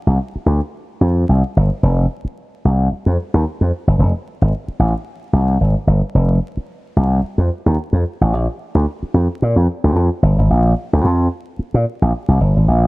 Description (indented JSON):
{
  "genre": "funk",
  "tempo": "111 BPM",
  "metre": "4/4",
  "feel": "swing 56% on 16ths",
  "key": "unclear",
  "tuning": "A4 = 440 Hz",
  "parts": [
    { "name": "slap bass with an envelope filter", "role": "solo", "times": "0.1-12.9 s", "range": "F1 to Bb2", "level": "-14 LUFS", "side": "equal", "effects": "none" }
  ],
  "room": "little or no reverb",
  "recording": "dry, close 1970s-style studio recording, vinyl crackle",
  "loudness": "-14 LUFS",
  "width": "side -22 dB against mid",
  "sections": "0.0-10.5 A section; 10.5-12.9 B section",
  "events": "none",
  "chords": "none"
}